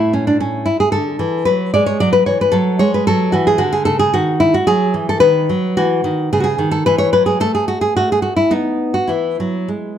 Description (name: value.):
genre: classical, baroque-style dance for nylon-string guitar.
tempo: 111 BPM.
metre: 3/4.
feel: rubato.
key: unclear.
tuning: A4 = 440 Hz.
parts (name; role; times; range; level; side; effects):
nylon-string guitar; solo; 0.0-10.0 s; A2 to D5; -13 LUFS; equal; none.
room: moderate recital hall reverb, RT60 1.4 s.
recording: dark, warm production.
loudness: -13 LUFS.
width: side -9 dB against mid.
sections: 0.0-10.0 A section.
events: none.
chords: 0.0 A; 0.9 D; 2.6 D/F#; 4.2 B/D#; 5.8 C#m11; 7.4 N.C.; 9.1 E.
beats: 0.41 | 0.94 1.48 2.02 | 2.56 3.09 3.62 | 4.16 4.69 5.23 | 5.76 6.31 6.86 | 7.41 7.97 8.53 | 9.12 9.71.